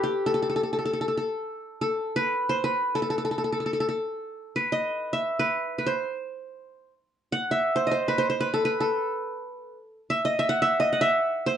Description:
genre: Arabic maqam ensemble.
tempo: free time.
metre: none.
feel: none.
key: A maqam nikriz.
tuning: A4 = 440 Hz.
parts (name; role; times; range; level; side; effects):
qanun; solo; 0.0-11.6 s; G4 to F#5; -24 LUFS; equal; none.
room: moderate studio reverb, RT60 0.6 s.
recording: dark, warm production, nothing above 10.5 kHz.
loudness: -24 LUFS.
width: side -9 dB against mid.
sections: 0.0-11.6 A section.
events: none.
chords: none.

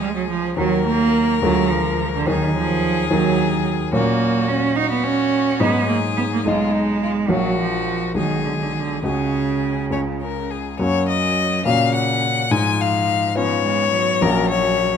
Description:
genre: quick classical-period movement for piano trio.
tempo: 71 BPM (dotted quarters).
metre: 6/8.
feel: rubato.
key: F# major from 3.9 s.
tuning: A4 = 440 Hz.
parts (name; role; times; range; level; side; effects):
rich violin; melody; 0.0-15.0 s; D#4 to G#5; -22 LUFS; left 8 dB; none.
rich cello; second line; 0.0-15.0 s; C#3 to D#4; -21 LUFS; right 6 dB; none.
warm baby grand piano; accompaniment; 0.0-15.0 s; A#1 to D#5; -22 LUFS; left 2 dB; none.
room: moderate scoring stage reverb, RT60 1.8 s.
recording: close, detailed microphones.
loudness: -17 LUFS.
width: side -7 dB against mid.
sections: 0.0-10.8 A section; 10.8-15.0 B section.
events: none.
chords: 0.0 Db; 0.6 Ebm; 1.4 Bb7/D; 2.3 Ebm; 3.9 F#/A#; 5.6 G#5; 6.5 G#m/B; 7.3 F#/A#; 8.2 B6; 9.0 C#sus4; 9.9 C#; 10.8 F#; 11.7 F#/A#; 12.5 C#7/G#; 14.2 F#/A#.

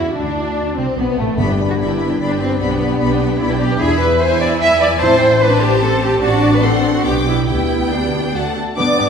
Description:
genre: quick classical-period movement for symphony orchestra.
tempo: 148 BPM.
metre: 3/4.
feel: rubato.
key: G major.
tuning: A4 = 442 Hz.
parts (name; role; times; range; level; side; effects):
rich studio violin section; melody; 0.0-9.1 s; A3 to D6; -24 LUFS; left 4 dB; none.
rich studio violin section; second line; 0.0-9.1 s; A3 to G5; -24 LUFS; left 2 dB; none.
rich studio viola section; accompaniment; 0.0-9.1 s; A3 to E4; -22 LUFS; equal; none.
dark French horn section; sustained chords; 0.0-9.1 s; A3 to G4; -21 LUFS; left 2 dB; none.
rich studio double bass section; bass; 0.0-9.1 s; G1 to G2; -20 LUFS; right 2 dB; none.
warm studio cello section; bass; 0.0-8.8 s; D3 to E5; -18 LUFS; right 1 dB; none.
timpani; percussion; 1.4-1.9 s; G2; -24 LUFS; left 2 dB; none.
mellow clarinet; second line; 8.8-9.1 s; D4; -24 LUFS; left 3 dB; none.
mellow concert flute; second line; 8.8-9.1 s; D5; -22 LUFS; left 2 dB; none.
mellow cor anglais; second line; 8.8-9.1 s; none; barely audible; none; none.
clear bassoon; accompaniment; 8.8-9.1 s; B3; -23 LUFS; right 1 dB; none.
dark trumpet section; stabs; 8.8-9.1 s; D5; -21 LUFS; right 6 dB; none.
room: wet scoring stage reverb, RT60 1.8 s.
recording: heard from further back in the room.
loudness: -13 LUFS.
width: side -6 dB against mid.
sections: 0.0-8.8 A section.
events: none.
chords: 0.2 D5; 1.4 G; 2.6 G/B; 3.8 E7; 5.0 Am7; 6.2 D7/A; 7.0 G/B; 7.5 G/D; 8.3 D.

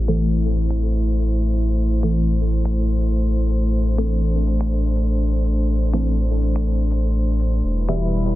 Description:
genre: dub techno.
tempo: 123 BPM.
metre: 4/4.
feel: swing 56% on 16ths.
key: A minor.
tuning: A4 = 440 Hz.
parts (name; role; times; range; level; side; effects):
airy breathy pad; sustained chords; 0.0-8.4 s; G3 to C5; -26 LUFS; left 2 dB; chorus.
warm sub bass; bass; 0.0-8.4 s; E1 to A1; -19 LUFS; equal; none.
deep mellow chord stab; stabs; 0.1-8.4 s; B2 to A4; -26 LUFS; left 1 dB; chorus, phaser, cassette tape, dub echo.
soft vintage rhythm box; drums; 0.1-8.0 s; finger snaps, hi-hat; -41 LUFS; equal; low-pass filter on hats, soft clipping on snare, low-pass filter on snare, dub echo.
room: light reverb.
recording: dense, heavily limited modern master, low-pass filter.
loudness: -18 LUFS.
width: side -16 dB against mid.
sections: 0.0-8.4 A section.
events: filter sweep on drum 0.0-8.4; filter sweep on analog synth pad 0.0-8.4; filter sweep 0.0-8.4.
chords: 0.0 Am; 7.6 Em.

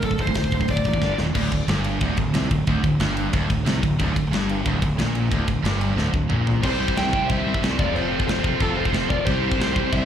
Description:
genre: heavy metal.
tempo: 182 BPM.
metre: 4/4.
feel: straight.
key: unclear.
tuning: A4 = 437 Hz.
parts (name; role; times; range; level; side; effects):
bluesy overdriven lead guitar; melody; 0.0-1.2, 6.6-10.1 s; A4 to G5; -27 LUFS; left 1 dB; distortion, slapback echo, digital delay.
distorted electric guitar; riff; 0.0-10.1 s; D2 to G3; -29 LUFS; left 8 dB; distortion, slapback echo.
heavy high-gain guitar; riff; 0.0-10.1 s; D2 to C5; -28 LUFS; right 9 dB; distortion, slapback echo.
fuzz fingered electric bass; bass; 0.0-10.1 s; D1 to C2; -25 LUFS; equal; overdrive.
tight metal drum kit; drums; 0.0-10.0 s; china cymbal, crash cymbal, hi-hat, kick drum, ride cymbal, snare drum, toms; -25 LUFS; equal; none.
biting overdriven guitar; riff; 1.4-10.1 s; D2 to C4; -27 LUFS; equal; none.
high-gain lead guitar; second line; 6.7-10.1 s; F4 to E5; -35 LUFS; right 2 dB; distortion, slapback echo, digital delay.
room: little or no reverb.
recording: live gig heard through the venue's PA, club reverb.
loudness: -19 LUFS.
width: side -9 dB against mid.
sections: 0.0-1.4 A section; 1.4-6.6 B section; 6.6-10.1 C section.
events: drum fill 1.0-1.4, 6.0-6.6.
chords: 0.0 D5; 1.0 G5; 1.2 Eb5; 1.4 Gmadd11/D; 6.6 C; 7.8 F; 9.3 C5.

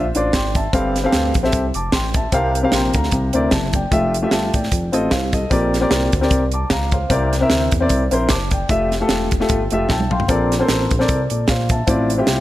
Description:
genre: uptempo gospel.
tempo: 151 BPM.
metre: 4/4.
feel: swing 56% on 8ths.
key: F major.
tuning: A4 = 440 Hz.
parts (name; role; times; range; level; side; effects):
warm upright piano; accompaniment; 0.0-12.4 s; G2 to D6; -19 LUFS; left 1 dB; none.
smooth synth bass; bass; 0.0-12.4 s; E1 to E2; -22 LUFS; equal; none.
tight funk drum kit; drums; 0.1-12.4 s; hi-hat, kick drum, snare drum, toms; -20 LUFS; right 1 dB; none.
room: light reverb.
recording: none.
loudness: -15 LUFS.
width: side -15 dB against mid.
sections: 0.0-12.4 A section.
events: upright piano fill 0.1-0.7, 9.7-10.3; drum fill 9.9-10.3.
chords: 0.0 Dm9; 0.7 G9sus4; 2.3 C7sus4; 3.1 C9; 3.9 Fmaj9; 4.7 F7; 5.5 Bb69; 7.1 C9; 8.7 Fmaj9; 10.3 Bbmaj9; 11.9 Dm9.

